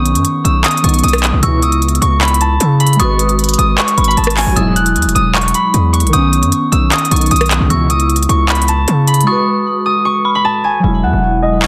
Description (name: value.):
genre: hip hop, trap.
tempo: 153 BPM.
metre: 4/4.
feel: half-time.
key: E major.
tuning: A4 = 440 Hz.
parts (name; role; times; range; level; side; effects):
concert harp; melody; 0.0-11.7 s; G#4 to F#6; -18 LUFS; equal; low-pass filter, digital delay.
dark detuned synth bell; second line; 0.0-10.4 s; B5 to E6; -25 LUFS; equal; chorus, digital delay.
warbly lo-fi synth keys; accompaniment; 0.0-11.7 s; C#3 to B4; -20 LUFS; equal; chorus, low-pass filter.
distorted 808-style bass; bass; 0.0-11.7 s; E1 to C#3; -16 LUFS; equal; distortion.
trap drum kit; drums; 0.1-9.3, 11.6-11.7 s; handclaps, hi-hat, rim click; -19 LUFS; equal; none.
mellow synth brass; stabs; 1.4-1.6, 4.6-4.7, 7.7-7.9 s; B1 to F#3; -22 LUFS; equal; chorus.
room: light reverb, digital ambience.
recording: dense, heavily limited modern master.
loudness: -13 LUFS.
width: mono.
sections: 0.0-10.8 A section.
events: drums muted 9.3-10.8; hi-hats muted 10.8-11.7.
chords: 0.0 Badd9; 1.4 C#m7; 3.0 G#m7; 4.6 Eadd9; 6.1 Badd9; 7.7 C#m7; 9.3 G#m7; 10.8 Eadd9.